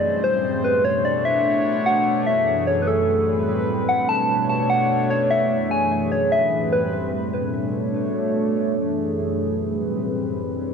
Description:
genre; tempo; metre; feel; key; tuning
IDM; 148 BPM; 4/4; swing 62% on 16ths; B minor; A4 = 441 Hz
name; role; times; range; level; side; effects
soft struck synth lead; melody; 0.0-7.1 s; A4 to A5; -21 LUFS; left 1 dB; chorus, tape echo
warbly tape-like pad; sustained chords; 0.0-10.7 s; F#2 to C#5; -22 LUFS; equal; chorus, built-in reverb
room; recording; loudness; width
wet spring reverb, RT60 1.4 s; echo-heavy mix, nothing above 10.6 kHz; -19 LUFS; side -6 dB against mid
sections
0.0-7.1 A section; 7.1-10.7 B section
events
none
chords
0.0 Am7; 0.6 Bm9; 2.3 F#m9; 3.1 Am9; 3.9 Bm9; 5.5 F#m9; 6.3 Am9; 7.1 Bm9; 8.8 F#m9; 9.6 Am9

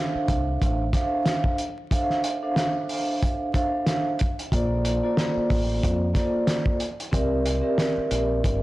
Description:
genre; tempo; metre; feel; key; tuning
hip hop, boom-bap hip-hop; 92 BPM; 4/4; swing 58% on 16ths; D minor; A4 = 442 Hz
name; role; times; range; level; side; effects
vibraphone with soft mallets; accompaniment; 0.0-8.6 s; Bb3 to F5; -25 LUFS; right 1 dB; cassette tape, high-pass filter, low-pass filter
deep dub fingered electric bass; bass; 0.2-8.6 s; G1 to F2; -27 LUFS; equal; tube saturation
cloth-damped thuddy drum kit; drums; 0.3-8.6 s; hi-hat, kick drum, snare drum; -25 LUFS; equal; none
room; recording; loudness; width
light reverb, small room ambience; blown-out, overdriven recording, vinyl crackle, overdrive; -22 LUFS; side -18 dB against mid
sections
0.0-8.6 A section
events
none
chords
0.0 Dm7; 4.5 Bbmaj7; 7.1 C9

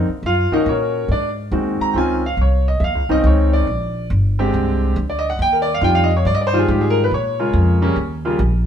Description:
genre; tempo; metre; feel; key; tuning
jazz piano trio; 140 BPM; 4/4; swing 67% on 8ths; Eb major; A4 = 440 Hz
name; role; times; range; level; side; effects
clear concert grand piano; melody; 0.0-8.4 s; Db3 to Bb5; -18 LUFS; equal; none
upright bass; bass; 0.0-8.7 s; G1 to Bb2; -18 LUFS; equal; none
room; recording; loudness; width
moderate stone room reverb, RT60 1.1 s; band playing live in one room; -15 LUFS; side -8 dB against mid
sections
0.0-8.7 A section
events
grand piano solo 0.0-8.7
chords
0.2 Ebm7; 1.1 Ab7; 2.0 Dbmaj9; 3.7 Bb13; 5.4 Ebmaj9; 7.1 Bbm7; 8.0 Eb5

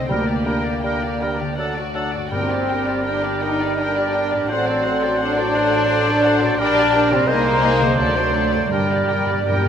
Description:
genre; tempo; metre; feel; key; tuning
classical, slow romantic movement for symphony orchestra; 84 BPM; 3/4; uneven beats, rubato; G minor; A4 = 441 Hz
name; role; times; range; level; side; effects
warm studio violin section; melody; 0.0-9.7 s; C5 to G5; -27 LUFS; left 2 dB; none
warm studio violin section; second line; 0.0-9.7 s; Eb4 to D5; -30 LUFS; left 1 dB; none
warm studio viola section; accompaniment; 0.0-9.7 s; D4 to A4; -30 LUFS; right 1 dB; none
clear French horn section; sustained chords; 0.0-9.7 s; G3 to Eb4; -22 LUFS; left 3 dB; none
concert harp; arpeggios; 0.0-9.7 s; G2 to Bb4; -31 LUFS; left 5 dB; none
dark studio cello section; bass; 0.0-9.7 s; G3 to Eb4; -26 LUFS; right 3 dB; none
rich studio double bass section; bass; 0.0-9.7 s; G1 to G2; -28 LUFS; right 2 dB; none
mellow hollow silver concert flute; second line; 0.1-9.7 s; C5 to D5; -26 LUFS; right 4 dB; none
warm oboe; second line; 0.1-9.7 s; A4 to C5; -25 LUFS; equal; none
dark bassoon; accompaniment; 0.1-9.7 s; F#3 to Ab3; -29 LUFS; right 1 dB; none
timpani; percussion; 0.1-3.4, 8.7-9.7 s; G2 to D3; -28 LUFS; equal; none
room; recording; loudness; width
wet scoring stage reverb, RT60 1.7 s; none; -17 LUFS; side -8 dB against mid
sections
0.0-9.7 A section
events
timpani fill 8.7-9.7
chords
0.1 Gm/D; 1.6 D; 2.3 Gm; 4.5 D7/A; 6.6 Gm/Bb; 7.3 Ab/C; 8.0 D7; 8.7 Gm

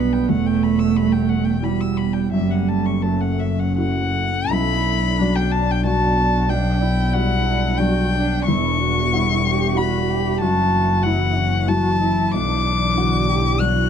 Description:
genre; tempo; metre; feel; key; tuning
neoclassical piano and strings; 79-96 BPM; 3/4; rubato; B minor; A4 = 440 Hz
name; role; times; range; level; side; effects
muted violin; melody; 0.0-13.9 s; E5 to F#6; -23 LUFS; left 4 dB; none
muted cello; second line; 0.0-13.9 s; F#3 to G4; -24 LUFS; right 8 dB; none
felt-muted upright piano; accompaniment; 0.0-13.9 s; B1 to F#5; -23 LUFS; left 2 dB; none
warbly tape-like pad; sustained chords; 0.0-13.9 s; E3 to F#5; -28 LUFS; equal; chorus, built-in reverb
muted double bass; bass; 0.0-13.9 s; E1 to B1; -22 LUFS; left 1 dB; none
room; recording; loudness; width
moderate studio reverb, RT60 0.6 s; dark, warm production; -17 LUFS; side -8 dB against mid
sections
0.0-4.5 A section; 4.5-13.9 B section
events
none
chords
0.3 Emadd9; 2.3 F#m7; 4.5 Bm; 6.5 Gmaj7/B; 8.5 Emadd9; 10.4 F#m7; 12.3 Bm

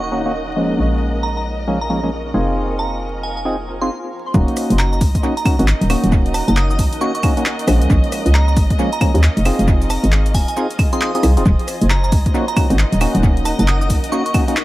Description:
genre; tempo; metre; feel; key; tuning
UK garage, two-step garage; 135 BPM; 4/4; swing 62% on 16ths; Eb dorian; A4 = 440 Hz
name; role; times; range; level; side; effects
glassy synth bell; melody; 0.0-14.3 s; Ab5 to Eb6; -26 LUFS; right 2 dB; chorus, tremolo, dub echo
rich chamber violin section; sustained chords; 0.0-14.6 s; Eb5; -30 LUFS; left 1 dB; sidechain pumping, low-pass filter
hollow knocking FM bass; bass; 0.0-14.0 s; Eb1 to Eb2; -16 LUFS; equal; none
granular cloud pad; texture; 0.0-14.6 s; Eb4 to Ab5; -29 LUFS; equal; built-in reverb, sidechain pumping
percussive organ stab; stabs; 0.1-14.5 s; F3 to Ab4; -21 LUFS; equal; chorus, tape echo
electronic kick drum; drums; 4.3-14.5 s; none; -16 LUFS; equal; overdrive
punchy analog drum machine; drums; 4.3-14.6 s; claves, handclaps, hi-hat, rim click, shaker; -25 LUFS; equal; overdrive, low-pass filter on snare, low-pass filter on hats, low-pass filter on perc, dub echo
room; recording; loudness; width
light reverb, digital ambience; echo-heavy mix, vinyl crackle; -14 LUFS; side -17 dB against mid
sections
0.0-4.3 A section; 4.3-14.6 B section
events
filter sweep on synth stab 0.0-4.3; stop 3.9-4.3; drop 4.3-14.6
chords
0.0 Ebm7; 0.8 Bbm7; 2.3 Fm7; 4.3 Ebm7; 7.9 Bbm7; 9.5 Fm7; 11.5 Ebm7

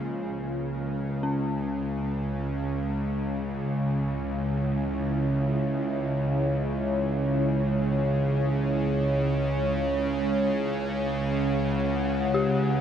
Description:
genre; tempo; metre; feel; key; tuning
dark ambient drone; free time; none; none; C# minor; A4 = 439 Hz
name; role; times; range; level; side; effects
deep dark ambient pad; sustained chords; 0.0-12.8 s; G#3 to F#5; -30 LUFS; equal; chorus, built-in reverb
bowed-like drone; drone; 0.0-12.8 s; C#2 to C#3; -26 LUFS; right 1 dB; built-in reverb
dark detuned synth bell; arpeggios; 1.2-12.8 s; C#4 to G4; -34 LUFS; left 3 dB; chorus, tape echo
room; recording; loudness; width
wet cathedral reverb, RT60 7.5 s; none; -24 LUFS; side -9 dB against mid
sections
0.1-12.8 A section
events
none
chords
0.1 C#m

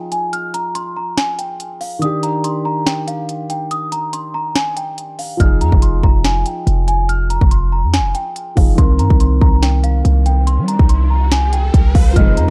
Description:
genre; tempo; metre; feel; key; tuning
hip hop, trap; 142 BPM; 4/4; half-time; F dorian; A4 = 442 Hz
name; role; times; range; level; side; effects
celesta; melody; 0.0-12.5 s; F5 to F6; -24 LUFS; equal; digital delay
dark baby grand piano; accompaniment; 0.0-12.5 s; Eb3 to Bb4; -26 LUFS; equal; none
trap drum kit; drums; 0.1-12.5 s; hi-hat, kick drum, snare drum; -17 LUFS; equal; none
hard-hitting 808-style bass; bass; 5.4-12.5 s; F1 to G3; -16 LUFS; equal; none
riser; sound effects; 10.0-12.2 s; none; -32 LUFS; equal; none
hollow clarinet-like synth lead; second line; 12.2-12.5 s; Eb5; -26 LUFS; equal; chorus
dark analog pad; sustained chords; 12.3-12.5 s; F3 to Ab4; -28 LUFS; equal; chorus
dark chamber string section; stabs; 12.2-12.5 s; C2 to Eb3; -21 LUFS; equal; none
room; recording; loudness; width
little or no reverb; dark, warm production; -15 LUFS; mono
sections
0.0-12.2 A section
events
break 0.0-5.4; riser 10.0-12.2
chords
0.0 Fm7; 2.0 Ebmaj7; 5.4 Fm7; 8.8 Cm7

